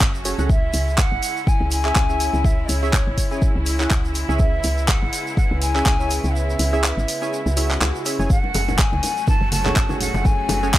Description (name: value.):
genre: afro house.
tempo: 123 BPM.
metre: 4/4.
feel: swing 56% on 16ths.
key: unclear.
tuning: A4 = 438 Hz.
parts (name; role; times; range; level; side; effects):
clear symphonic string section; sustained chords; 0.0-10.8 s; C#3 to F#4; -30 LUFS; equal; sidechain pumping.
woody FM bass; bass; 0.0-10.8 s; F#1 to C#2; -23 LUFS; equal; sidechain pumping.
deep house drum kit; drums; 0.0-10.8 s; handclaps, hi-hat; -24 LUFS; equal; none.
electronic kick drum; drums; 0.0-10.8 s; none; -19 LUFS; equal; none.
tube shaker; percussion; 0.0-10.8 s; none; -33 LUFS; right 4 dB; none.
warm analog keys; stabs; 0.3-10.7 s; C#4 to G#5; -27 LUFS; right 2 dB; chorus, sidechain pumping, tape echo.
breathy mellow jazz flute; melody; 0.5-10.8 s; C#5 to A5; -26 LUFS; left 1 dB; analog delay.
swell; sound effects; 7.6-8.3 s; none; -33 LUFS; left 1 dB; none.
bongos; percussion; 8.4-10.6 s; none; -29 LUFS; left 5 dB; none.
congas; percussion; 8.5-10.8 s; none; -30 LUFS; right 2 dB; none.
room: small room ambience.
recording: dry, gritty hardware recording.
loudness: -17 LUFS.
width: side -14 dB against mid.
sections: 0.0-10.8 A section.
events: kick drops out 6.3-8.3; swell 7.6-8.3.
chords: 0.5 C#m; 8.3 F#madd9.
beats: 0.01 | 0.49 0.98 1.47 1.96 | 2.45 2.93 3.42 3.91 | 4.40 4.88 5.37 5.86 | 6.35 6.84 7.32 7.81 | 8.30 8.79 9.28 9.76 | 10.25 10.74.